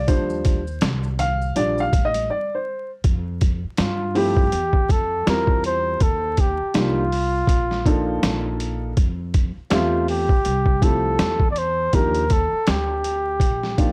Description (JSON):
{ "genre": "hip hop, jazz-hop", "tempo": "81 BPM", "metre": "4/4", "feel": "swing 58% on 16ths", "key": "F major", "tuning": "A4 = 440 Hz", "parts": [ { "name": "dark upright piano", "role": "accompaniment", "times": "0.0-13.9 s", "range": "F3 to F5", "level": "-25 LUFS", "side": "equal", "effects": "none" }, { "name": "upright bass", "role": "bass", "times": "0.0-13.9 s", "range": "A1 to G2", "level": "-29 LUFS", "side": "equal", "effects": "none" }, { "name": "boom bap sampler-style drum kit", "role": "drums", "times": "0.1-13.9 s", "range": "hi-hat, kick drum, snare drum", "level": "-23 LUFS", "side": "equal", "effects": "vintage 12-bit sampler grit" }, { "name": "maracas and congas", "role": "percussion", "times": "0.1-2.3 s", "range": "none", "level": "-40 LUFS", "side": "equal", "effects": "none" }, { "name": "breathy flugelhorn", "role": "melody", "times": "3.8-13.9 s", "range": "F4 to D5", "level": "-25 LUFS", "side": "equal", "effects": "none" } ], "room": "little or no reverb", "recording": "dry, gritty hardware recording, vinyl crackle", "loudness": "-21 LUFS", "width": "mono", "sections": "0.0-3.0 A section; 3.0-13.9 B section", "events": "upright piano solo 0.0-3.0; break 2.3-3.0", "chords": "0.1 Ebmaj9; 3.0 Fmaj7sus2; 6.0 Ebmaj7sus2; 9.0 Fmaj9; 11.9 Ebmaj9" }